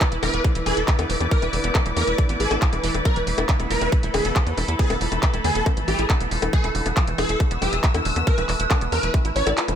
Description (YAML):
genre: psychedelic trance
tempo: 138 BPM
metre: 4/4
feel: straight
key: unclear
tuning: A4 = 435 Hz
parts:
  - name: overtone-sweeping drone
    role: sustained chords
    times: 0.0-9.8 s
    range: A3 to D5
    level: -31 LUFS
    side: right 1 dB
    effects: chorus, built-in reverb, sidechain pumping
  - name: wide unison pluck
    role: riff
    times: 0.0-9.7 s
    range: D3 to F4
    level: -31 LUFS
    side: right 2 dB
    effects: auto-pan, sidechain pumping, digital delay
  - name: drum and bass drum kit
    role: drums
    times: 0.0-9.8 s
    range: bongos, handclaps, hi-hat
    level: -27 LUFS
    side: left 2 dB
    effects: studio reverb
  - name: electronic kick drum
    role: drums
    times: 0.0-9.2 s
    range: none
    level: -20 LUFS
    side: equal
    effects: studio reverb
  - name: muted studio string section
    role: texture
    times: 0.0-9.8 s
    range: E4 to E6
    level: -30 LUFS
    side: left 2 dB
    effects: sidechain pumping
  - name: tight sequencer bass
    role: bass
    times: 0.1-9.8 s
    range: E1 to E2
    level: -26 LUFS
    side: equal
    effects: none
  - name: swarming rave lead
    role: melody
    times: 0.2-9.5 s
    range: G#4 to D5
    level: -27 LUFS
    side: equal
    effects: chorus, phaser, sidechain pumping, ping-pong delay
  - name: formant-sweep wobble bass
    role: second line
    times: 4.5-5.0 s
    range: B3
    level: -38 LUFS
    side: right 6 dB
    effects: none
room: light reverb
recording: none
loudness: -19 LUFS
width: side -9 dB against mid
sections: 0.0-9.8 A section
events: break 9.6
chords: 0.0 E5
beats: 0.01 0.45 0.88 | 1.31 1.75 2.18 2.62 | 3.05 3.49 3.92 4.36 | 4.79 5.23 5.66 6.10 | 6.53 6.97 7.40 7.84 | 8.27 8.71 9.14 9.57